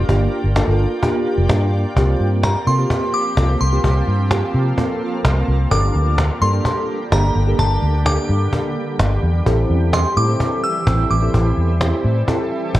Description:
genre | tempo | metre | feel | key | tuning
dance-pop | 128 BPM | 4/4 | straight | G dorian | A4 = 444 Hz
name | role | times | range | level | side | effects
shimmering ambient pad | sustained chords | 0.0-12.8 s | D3 to G5 | -26 LUFS | right 1 dB | chorus, built-in reverb
vintage muted fingered electric bass | bass | 0.0-12.8 s | F1 to C3 | -16 LUFS | equal | none
soft electric-piano-like synth keys | accompaniment | 0.1-12.8 s | Bb3 to G5 | -22 LUFS | equal | chorus, phaser
cajon | drums | 0.1-12.8 s | none | -21 LUFS | equal | none
glassy synth bell | melody | 2.4-11.8 s | A5 to E6 | -23 LUFS | equal | chorus, phaser, ping-pong delay
room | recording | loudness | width
light reverb | worn, warbling old tape, cassette tape, warbly pitch drift | -15 LUFS | side -15 dB against mid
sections
0.1-2.0 A section; 2.0-12.8 B section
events
synth keys fill 12.3-12.8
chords
0.1 Gm7; 2.0 C7sus4; 5.7 Gmadd9; 9.5 Am7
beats
| 0.09 0.56 1.03 1.50 | 1.96 2.43 2.90 3.37 | 3.84 4.31 4.78 5.25 | 5.71 6.18 6.65 7.12 | 7.59 8.06 8.53 8.99 | 9.46 9.93 10.40 10.87 | 11.34 11.81 12.28 12.74

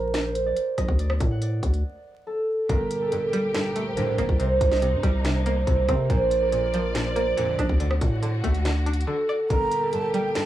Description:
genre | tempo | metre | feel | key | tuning
hip hop, trap | 141 BPM | 4/4 | half-time | G minor | A4 = 441 Hz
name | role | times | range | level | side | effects
concert harp | melody | 0.0-10.5 s | A4 to F#5 | -26 LUFS | right 2 dB | tape echo
growling 808-style bass | bass | 0.0-10.5 s | G1 to C3 | -26 LUFS | equal | none
trap drum kit | drums | 0.1-10.5 s | finger snaps, hi-hat, kick drum, rim click, snare drum | -26 LUFS | equal | vintage 12-bit sampler grit
string-like resonator pluck | accompaniment | 2.7-10.5 s | G2 to D5 | -31 LUFS | equal | chorus
warm symphonic string section | sustained chords | 2.7-10.5 s | Bb2 to D5 | -35 LUFS | left 1 dB | none
big bright polysynth | stabs | 4.0-4.2, 7.4-7.6 s | Bb1 to D3 | -34 LUFS | right 1 dB | chorus, tape echo
breathy mellow silver concert flute | second line | 9.5-10.5 s | G5 to Bb5 | -27 LUFS | right 2 dB | tape echo
room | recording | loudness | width
small room ambience | dry, gritty hardware recording, vinyl crackle | -21 LUFS | side -13 dB against mid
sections
0.0-2.7 A section; 2.7-10.5 B section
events
break 1.8-2.7; drums muted 9.1-9.5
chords
0.0 Bb; 1.0 D5; 2.7 Gmadd9; 4.4 Cm7; 6.1 Bb; 7.8 D; 9.5 Gmadd9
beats
0.14 0.57 | 0.99 1.42 1.84 2.27 | 2.69 3.12 3.54 3.97 | 4.40 4.82 5.25 5.67 | 6.10 6.52 6.95 7.38 | 7.80 8.23 8.65 9.08 | 9.50 9.93 10.35

